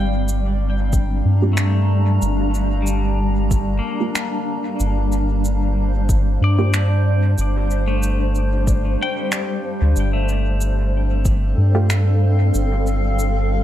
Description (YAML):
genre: ambient dub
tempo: 93 BPM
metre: 4/4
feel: swing 53% on 16ths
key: G minor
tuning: A4 = 441 Hz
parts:
  - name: granular cloud pad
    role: sustained chords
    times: 0.0-13.6 s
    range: G3 to Bb5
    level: -23 LUFS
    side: equal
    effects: built-in reverb
  - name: pedal steel guitar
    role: arpeggios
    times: 0.0-13.3 s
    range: G3 to G5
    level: -29 LUFS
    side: left 3 dB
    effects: dub echo
  - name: round analog bass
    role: bass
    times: 0.0-13.6 s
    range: G1 to G2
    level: -18 LUFS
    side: equal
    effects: none
  - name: electronic cabasa and finger snaps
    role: drums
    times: 0.3-13.3 s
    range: none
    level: -27 LUFS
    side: equal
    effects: dub echo
  - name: electronic kick drum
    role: drums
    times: 0.9-11.4 s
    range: none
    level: -20 LUFS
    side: equal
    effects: none
  - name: filtered dub chord stab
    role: stabs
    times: 1.4-6.7, 11.7-11.9 s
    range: A3 to G4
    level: -28 LUFS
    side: right 4 dB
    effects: phaser, cassette tape, dub echo
room: light reverb, digital ambience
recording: none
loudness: -16 LUFS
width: side -12 dB against mid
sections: 0.0-13.6 A section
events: none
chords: 0.0 Gm7; 10.0 Fadd9/G